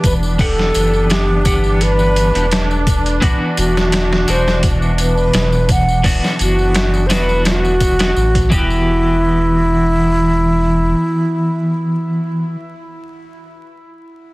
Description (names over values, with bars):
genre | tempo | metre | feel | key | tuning
trip hop | 85 BPM | 4/4 | swing 53% on 16ths | E minor | A4 = 440 Hz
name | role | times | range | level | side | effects
breathy mellow concert flute | melody | 0.0-12.5 s | E4 to F#5 | -19 LUFS | equal | tape echo
twelve-string electric guitar | accompaniment | 0.0-12.6 s | B2 to F#5 | -18 LUFS | equal | tremolo, vintage 12-bit sampler grit
muted studio string section | sustained chords | 0.0-8.5 s | D4 | -25 LUFS | right 1 dB | none
warm sub bass | bass | 0.0-10.9 s | E1 to A1 | -18 LUFS | equal | tube saturation
trip hop sampler-style drum kit | drums | 0.0-8.7 s | hi-hat, kick drum, snare drum | -18 LUFS | equal | overdrive
tambourine | percussion | 0.0-8.8 s | none | -30 LUFS | left 3 dB | none
room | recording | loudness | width
light reverb, small room ambience | dense, heavily limited modern master, vinyl crackle | -12 LUFS | side -21 dB against mid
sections
0.0-8.9 A section; 8.9-11.7 B section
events
none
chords
0.0 Emadd9; 3.2 Bm/E; 8.5 Emadd9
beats
| 0.40 1.10 1.81 2.52 | 3.22 3.93 4.63 5.34 | 6.05 6.75 7.46 8.16 | 8.87 9.57 10.28 10.99